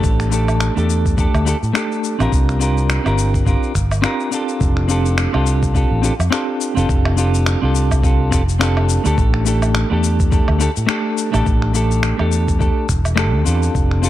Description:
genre	sunset chillout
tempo	105 BPM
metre	4/4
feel	swing 57% on 16ths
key	F major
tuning	A4 = 443 Hz
part	clean electric guitar	accompaniment	0.0-14.1 s	A3 to Bb4	-20 LUFS	equal	auto-pan, tape echo
part	fretless electric bass	bass	0.0-14.1 s	E1 to A2	-17 LUFS	equal	none
part	electronic kick drum	drums	0.0-13.9 s	none	-18 LUFS	equal	small room ambience
part	electronic shaker, finger snaps and woodblock	drums	0.0-14.1 s	none	-24 LUFS	equal	small room ambience
room	light reverb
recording	dark, warm production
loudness	-14 LUFS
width	side -13 dB against mid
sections	0.0-4.6 A section; 4.6-14.1 B section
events	break 4.0-4.6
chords	0.0 A7sus4; 2.3 C7sus4; 4.6 F6; 9.2 A7sus4

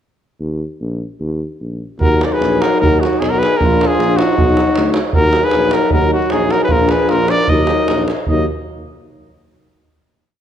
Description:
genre	balkan folk, Balkan brass band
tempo	153 BPM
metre	2/4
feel	straight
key	Eb harmonic minor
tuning	A4 = 440 Hz
part	mellow tuba	bass	0.4-8.5 s	Bb1 to Eb2	-20 LUFS	equal	none
part	clear trumpet	melody	2.0-8.5 s	Gb4 to Eb5	-17 LUFS	equal	none
part	mellow flugelhorn	second line	2.0-8.5 s	Bb3 to Bb4	-22 LUFS	left 2 dB	none
part	mellow French horn	accompaniment	2.0-8.5 s	D4 to Eb4	-21 LUFS	left 9 dB	none
part	warm euphonium	accompaniment	2.0-8.5 s	F3 to Gb3	-21 LUFS	right 8 dB	none
part	davul	percussion	2.0-8.4 s	none	-19 LUFS	right 2 dB	none
room	moderate recital hall reverb, RT60 1.9 s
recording	none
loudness	-12 LUFS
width	side -9 dB against mid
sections	0.4-2.0 intro; 2.0-8.3 A section; 8.3-9.0 final chord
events	none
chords	0.4 Eb5; 2.0 Ebm; 3.6 Bb; 4.4 B; 5.2 Ebm; 6.7 Bb; 7.5 Ebm

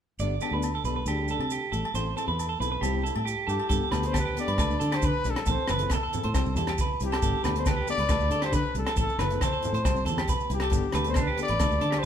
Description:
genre	highlife guitar band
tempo	137 BPM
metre	4/4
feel	straight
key	G major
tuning	A4 = 440 Hz
part	fingerpicked plugged-in steel-string acoustic guitar	accompaniment	0.2-12.0 s	E3 to A4	-35 LUFS	left 6 dB	none
part	electric guitar at the edge of break-up	arpeggios	0.2-12.1 s	D4 to D5	-31 LUFS	right 5 dB	spring reverb
part	fingered electric bass	bass	0.2-12.0 s	F#1 to D3	-30 LUFS	equal	none
part	maracas	percussion	0.2-12.0 s	none	-43 LUFS	right 7 dB	none
part	agogo bells	percussion	0.4-12.0 s	none	-38 LUFS	left 4 dB	none
part	clear trumpet	melody	3.5-12.1 s	G4 to D5	-31 LUFS	left 3 dB	none
part	compact cocktail drum kit	drums	3.7-12.0 s	hi-hat, kick drum, rim click	-30 LUFS	equal	none
part	congas	percussion	3.7-11.9 s	none	-37 LUFS	right 3 dB	none
room	moderate large studio reverb, RT60 1.3 s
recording	band playing live in one room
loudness	-24 LUFS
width	side -9 dB against mid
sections	0.2-3.7 A section; 3.7-12.1 B section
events	none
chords	0.2 Gadd9; 1.1 Dsus4; 2.0 Am; 2.8 C; 3.7 Gadd9; 4.6 Dsus4; 5.5 Am; 6.3 C; 7.2 Gadd9; 8.1 Dsus4; 9.0 Am; 9.9 C; 10.7 Gadd9

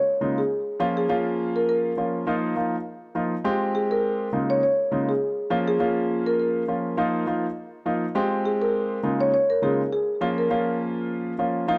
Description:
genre	afrobeats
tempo	102 BPM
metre	4/4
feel	swing 55% on 16ths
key	unclear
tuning	A4 = 440 Hz
part	marimba with medium mallets	melody	0.0-11.2 s	Ab4 to Db5	-27 LUFS	equal	none
part	warm grand piano	accompaniment	0.2-11.8 s	Db3 to G4	-27 LUFS	equal	none
room	light reverb, small room reverb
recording	none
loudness	-24 LUFS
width	mono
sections	0.0-11.8 A section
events	none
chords	0.0 Db6; 0.8 Bbm; 2.3 Ebsus2; 3.4 Fmadd9; 4.3 Db6; 5.5 Bbm; 7.0 Ebsus2; 8.2 Fmadd9; 9.0 Db6; 10.2 Bbm

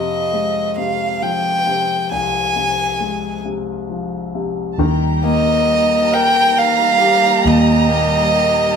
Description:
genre	six-eight pop ballad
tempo	45 BPM (dotted quarters)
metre	6/8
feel	straight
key	Eb major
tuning	A4 = 440 Hz
part	warm violin	melody	0.0-8.8 s	Eb5 to Ab5	-16 LUFS	right 1 dB	none
part	warm grand piano	accompaniment	0.0-8.8 s	C2 to Bb4	-20 LUFS	left 2 dB	none
part	rich studio violin section	second line	4.7-8.8 s	A5 to Bb5	-22 LUFS	right 3 dB	none
part	bright studio string section	sustained chords	4.8-8.8 s	Eb3 to G4	-23 LUFS	right 1 dB	none
part	vintage muted fingered electric bass	bass	4.8-8.8 s	Eb2	-20 LUFS	right 2 dB	none
room	wet large studio reverb, RT60 0.9 s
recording	band playing live in one room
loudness	-14 LUFS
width	side -6 dB against mid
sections	0.0-4.8 A section; 4.8-8.8 B section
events	none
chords	0.0 Fm; 4.8 Eb

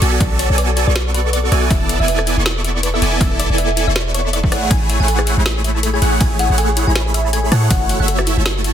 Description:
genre	future bass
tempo	160 BPM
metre	4/4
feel	swing 56% on 16ths, half-time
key	unclear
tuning	A4 = 439 Hz
part	thumb-piano-like synth pluck	melody	0.0-8.2 s	B4 to A5	-24 LUFS	equal	phaser, analog chorus, sidechain pumping, ping-pong delay
part	soft round pluck	arpeggios	0.0-8.7 s	E4 to B5	-28 LUFS	left 2 dB	chorus, cassette tape, sidechain pumping, dub echo
part	supersaw chords	riff	0.0-8.7 s	A3 to C#6	-19 LUFS	right 1 dB	phaser, sidechain pumping
part	warm 808-style bass	bass	0.0-8.7 s	E1 to A2	-18 LUFS	equal	sidechain pumping
part	trap drum kit	drums	0.0-8.7 s	hi-hat, ride cymbal, rim click, snare drum	-22 LUFS	left 2 dB	studio reverb
part	electronic kick drum	drums	0.2-7.8 s	none	-17 LUFS	equal	overdrive, studio reverb
room	light reverb, digital ambience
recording	dense, heavily limited modern master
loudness	-14 LUFS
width	side -9 dB against mid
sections	0.0-8.7 A section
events	none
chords	0.0 Bm7; 1.7 E7sus4; 4.5 Amaj7; 7.7 F#m7

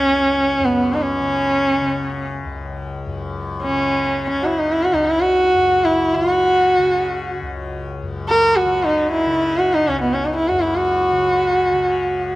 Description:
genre	indian classical, Hindustani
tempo	free time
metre	none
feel	none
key	unclear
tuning	A4 = 437 Hz
part	warm sarangi	melody	0.0-12.4 s	B3 to A#4-20c	-16 LUFS	equal	none
part	tanpura	drone	0.0-12.4 s	C#2 to C#3	-26 LUFS	left 3 dB	none
room	light reverb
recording	close, detailed microphones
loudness	-16 LUFS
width	side -17 dB against mid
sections	0.0-12.4 A section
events	none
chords	none

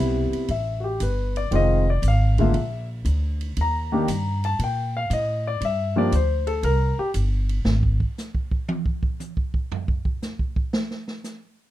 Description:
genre	jazz piano trio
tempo	117 BPM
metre	4/4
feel	swing 69% on 8ths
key	unclear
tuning	A4 = 440 Hz
part	dark concert grand piano	melody	0.0-7.1 s	C3 to Bb5	-24 LUFS	left 2 dB	none
part	upright bass	bass	0.0-8.0 s	F1 to Bb2	-22 LUFS	equal	none
part	swinging big-band drum kit	drums	0.3-11.4 s	hi-hat, kick drum, ride cymbal, snare drum, toms	-28 LUFS	right 1 dB	none
room	little or no reverb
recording	dark, warm production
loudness	-21 LUFS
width	side -14 dB against mid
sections	0.0-11.7 A section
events	grand piano solo 0.0-11.7; drum solo 7.7-11.7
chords	0.0 Cmaj7; 1.5 Fm7; 2.5 Bb; 3.6 Eb; 5.6 G5; 6.6 C5; 7.7 N.C.

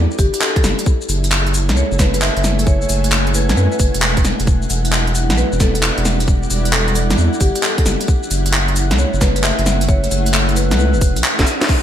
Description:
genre	UK garage, two-step garage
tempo	133 BPM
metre	4/4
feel	swing 66% on 16ths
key	unclear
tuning	A4 = 439 Hz
part	soft string machine	sustained chords	0.0-11.8 s	A3 to B4	-29 LUFS	left 1 dB	ensemble chorus, sidechain pumping
part	saturated sub bass	bass	0.0-11.4 s	E1 to F#2	-18 LUFS	equal	tube saturation, sidechain pumping
part	granular cloud pad	texture	0.0-11.8 s	G3 to G#5	-24 LUFS	equal	built-in reverb, sidechain pumping
part	garage drum kit	drums	0.1-11.8 s	crash cymbal, handclaps, hi-hat, shaker, snare drum	-18 LUFS	equal	gated reverb
part	marimba with medium hard mallets	melody	0.2-11.0 s	G4 to E5	-24 LUFS	left 1 dB	ping-pong delay
part	electronic kick drum	drums	0.2-11.8 s	none	-15 LUFS	equal	none
room	light reverb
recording	bright 1980s-style digital production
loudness	-13 LUFS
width	side -10 dB against mid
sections	0.0-11.8 A section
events	drum fill 11.4-11.7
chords	0.0 Em9; 0.6 F#m9; 4.5 Em9; 7.9 F#m9

